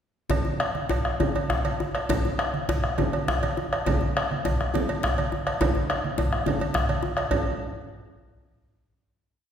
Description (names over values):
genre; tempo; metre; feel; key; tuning
west african traditional, West African drum ensemble; 137 BPM (dotted quarters); 12/8; uneven beats; none; none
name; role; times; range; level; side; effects
bombo; percussion; 0.3-7.4 s; none; -26 LUFS; left 1 dB; none
congas; percussion; 0.3-7.4 s; none; -30 LUFS; right 3 dB; none
cowbell; percussion; 0.3-7.4 s; none; -31 LUFS; right 4 dB; none
djembe; percussion; 0.3-7.4 s; none; -31 LUFS; left 3 dB; none
room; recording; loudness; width
wet scoring stage reverb, RT60 1.5 s; heard from further back in the room; -23 LUFS; side -8 dB against mid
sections
0.3-7.3 A section; 7.3-9.0 final hit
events
speeding up 0.3-9.0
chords
none